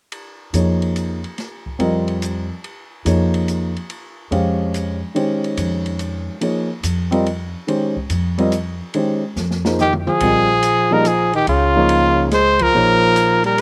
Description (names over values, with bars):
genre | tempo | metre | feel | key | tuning
modal jazz | 143 BPM | 3/4 | swing 67% on 8ths | Bb dorian | A4 = 440 Hz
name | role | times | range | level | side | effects
open jazz drum kit | drums | 0.1-13.6 s | hi-hat, kick drum, ride cymbal, snare drum, toms | -33 LUFS | equal | none
warm upright piano | accompaniment | 0.5-13.6 s | Eb3 to F5 | -22 LUFS | equal | none
upright bass | bass | 0.5-13.6 s | Bb1 to F2 | -24 LUFS | equal | none
brilliant trumpet | melody | 9.8-13.6 s | F4 to C5 | -17 LUFS | equal | slapback echo
breathy tenor saxophone | second line | 9.8-13.6 s | Db3 to Ab3 | -22 LUFS | equal | none
room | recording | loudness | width
little or no reverb | recorded outdoors, with no room sound | -18 LUFS | mono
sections
0.1-10.2 A section; 10.2-13.6 B section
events
drum fill 9.4-10.2; band accent 12.5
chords
0.1 Bbm9; 10.2 Bbm7